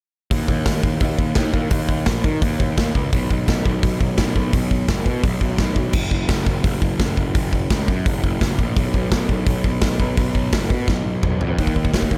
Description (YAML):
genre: heavy metal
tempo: 170 BPM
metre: 4/4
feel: straight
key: unclear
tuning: A4 = 440 Hz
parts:
  - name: fuzz picked electric bass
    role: bass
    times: 0.3-12.2 s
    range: F#1 to Eb3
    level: -24 LUFS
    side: equal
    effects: overdrive
  - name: big rock drum kit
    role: drums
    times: 0.3-12.2 s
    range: crash cymbal, hi-hat, kick drum, snare drum, toms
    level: -22 LUFS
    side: equal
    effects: none
room: little or no reverb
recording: none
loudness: -20 LUFS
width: mono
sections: 0.3-11.6 A section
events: drum fill 10.9-11.6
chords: none